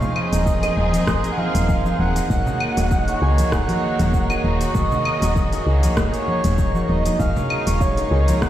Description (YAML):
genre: organic downtempo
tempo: 98 BPM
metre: 4/4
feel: swing 55% on 16ths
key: Eb dorian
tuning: A4 = 438 Hz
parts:
  - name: breathy flute-like synth lead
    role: melody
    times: 0.0-8.5 s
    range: Db5 to Ab5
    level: -26 LUFS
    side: right 1 dB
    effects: lush chorus, tape echo
  - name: pedal harmonium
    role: accompaniment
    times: 0.0-8.5 s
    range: Bb3 to Db5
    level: -28 LUFS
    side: right 3 dB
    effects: sidechain pumping, digital delay
  - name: rich studio string section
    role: sustained chords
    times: 0.0-8.5 s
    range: Db3 to Ab4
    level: -27 LUFS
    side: equal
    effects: sidechain pumping
  - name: santur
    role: arpeggios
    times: 0.0-8.5 s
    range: Eb4 to Eb5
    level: -28 LUFS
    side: right 1 dB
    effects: digital delay
  - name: organic electronic drum kit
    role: drums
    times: 0.0-8.5 s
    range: cabasa, claves, hi-hat, rim click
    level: -28 LUFS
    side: left 1 dB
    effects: none
  - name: congas and bongos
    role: percussion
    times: 0.0-8.4 s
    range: none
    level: -26 LUFS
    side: equal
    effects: none
  - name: woody FM bass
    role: bass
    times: 0.3-8.5 s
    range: Eb1 to Db2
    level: -20 LUFS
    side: equal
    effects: sidechain pumping
  - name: electronic kick drum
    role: drums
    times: 0.5-8.5 s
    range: none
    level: -23 LUFS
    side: equal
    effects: none
room: light reverb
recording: played on a big sound system in a bare room, stone room reverb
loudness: -17 LUFS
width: side -12 dB against mid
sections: 0.0-8.5 A section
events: none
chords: 0.0 Fm7/Eb; 2.3 Ebm7; 7.2 Db6/Eb